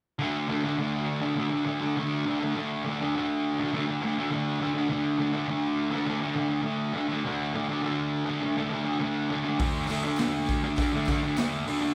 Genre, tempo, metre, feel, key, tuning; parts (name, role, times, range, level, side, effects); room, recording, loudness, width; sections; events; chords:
garage rock duo or trio; 102 BPM; 4/4; straight; A4 = 440 Hz
fuzz guitar; riff; 0.2-11.9 s; D3 to D4; -29 LUFS; equal; distortion
raw garage drum kit; drums; 9.6-11.8 s; hi-hat, kick drum, snare drum; -33 LUFS; equal
tambourine; percussion; 9.9-11.7 s; -48 LUFS; equal
light reverb; band playing live in one room; -28 LUFS; mono
0.2-11.9 A section
0.2 D5